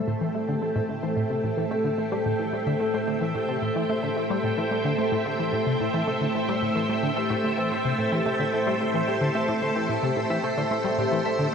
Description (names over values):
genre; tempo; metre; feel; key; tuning
ambient, sequencer-driven space music; 110 BPM; 4/4; straight; A minor; A4 = 440 Hz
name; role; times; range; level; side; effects
string machine, full ensemble; sustained chords; 0.0-11.5 s; A3 to G5; -25 LUFS; equal; ensemble chorus
concert harp; arpeggios; 0.0-11.5 s; G4 to A5; -34 LUFS; left 2 dB; auto-pan, analog delay
tight sequenced synth; riff; 0.1-11.5 s; A2 to A3; -28 LUFS; left 1 dB; chorus, analog delay
room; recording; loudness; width
wet huge ambient reverb, RT60 7.5 s; dreamy mix soaked in reverb; -23 LUFS; side -6 dB against mid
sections
0.0-11.5 A section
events
fade-in on harp 0.0-11.5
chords
0.0 Am7